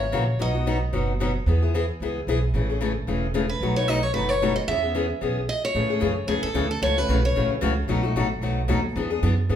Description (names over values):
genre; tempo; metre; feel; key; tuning
acoustic string swing (jazz manouche); 224 BPM; 4/4; swing 55% on 8ths; E major, A major from 5.8 s; A4 = 441 Hz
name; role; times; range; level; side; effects
picked steel-string acoustic guitar; melody; 0.0-1.3, 3.5-7.5 s; G#4 to E5; -26 LUFS; equal; none
picked steel-string acoustic guitar; accompaniment; 0.0-9.6 s; B2 to G#4; -25 LUFS; left 4 dB; none
upright bass; bass; 0.0-9.6 s; E1 to A2; -25 LUFS; right 1 dB; none
room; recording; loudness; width
moderate large studio reverb, RT60 0.8 s; band playing live in one room; -21 LUFS; side -9 dB against mid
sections
0.0-5.8 A section; 5.8-9.6 B section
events
none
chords
0.4 B; 1.5 E; 2.5 Amaj7; 3.6 B7; 4.7 E6; 5.8 Amaj7; 6.8 F#m7; 7.9 B7; 9.0 E7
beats
0.13 | 0.40 0.67 0.93 1.20 | 1.47 1.74 2.01 2.27 | 2.54 2.81 3.08 3.35 | 3.61 3.88 4.15 4.42 | 4.68 4.95 5.22 5.49 | 5.75 6.02 6.29 6.56 | 6.82 7.09 7.36 7.62 | 7.89 8.16 8.43 8.69 | 8.96 9.23 9.49